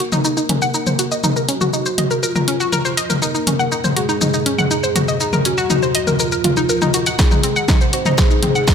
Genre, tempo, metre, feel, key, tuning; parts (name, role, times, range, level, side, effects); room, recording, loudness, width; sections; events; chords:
melodic techno; 121 BPM; 4/4; straight; Eb dorian; A4 = 440 Hz
soft octave-layered synth lead; melody; 0.0-8.7 s; F4 to C5; -22 LUFS; equal; chorus, phaser, sidechain pumping, digital delay
dark analog pad; sustained chords; 0.4-8.7 s; Eb3 to Eb4; -33 LUFS; right 1 dB; chorus, phaser, sidechain pumping
analog pluck; arpeggios; 0.0-8.7 s; C4 to Gb5; -20 LUFS; equal; chorus, sidechain pumping, digital delay
punchy analog drum machine; drums; 0.0-8.7 s; hi-hat, shaker, snare drum, toms; -18 LUFS; left 1 dB
electronic kick drum; drums; 7.2-8.7 s; -15 LUFS; equal
riser; sound effects; 8.4-8.7 s; -41 LUFS; right 2 dB
light reverb; -14 LUFS; side -7 dB against mid
0.0-8.7 A section
build-up 0.0-8.7; filter sweep on synth arpeggio sound 0.0-8.7; filter sweep on soft synth lead 0.0-8.7; filter sweep on analog synth pad 0.0-8.7; drum fill 7.2-8.7
0.0 Ebm; 7.2 Ab/Eb